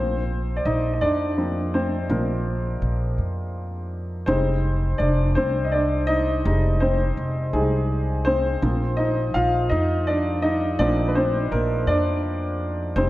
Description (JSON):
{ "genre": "six-eight pop ballad", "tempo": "55 BPM (dotted quarters)", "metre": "6/8", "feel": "straight", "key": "unclear", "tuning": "A4 = 444 Hz", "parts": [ { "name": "clear upright piano", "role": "accompaniment", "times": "0.0-13.1 s", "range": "F3 to F5", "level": "-22 LUFS", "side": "equal", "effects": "none" }, { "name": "upright bass", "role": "bass", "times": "0.0-13.1 s", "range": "F1 to F2", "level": "-24 LUFS", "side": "equal", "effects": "none" } ], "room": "moderate recital hall reverb, RT60 1.8 s", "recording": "dark, warm production", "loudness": "-20 LUFS", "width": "side -16 dB against mid", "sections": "0.0-13.1 A section", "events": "upright piano solo 0.0-13.1", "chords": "0.0 Bbsus2; 4.3 Fm7; 8.6 Bbsus2", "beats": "1.02 | 2.11 3.20 | 4.28 5.37 | 6.46 7.54 | 8.63 9.71 | 10.80 11.88 | 12.97" }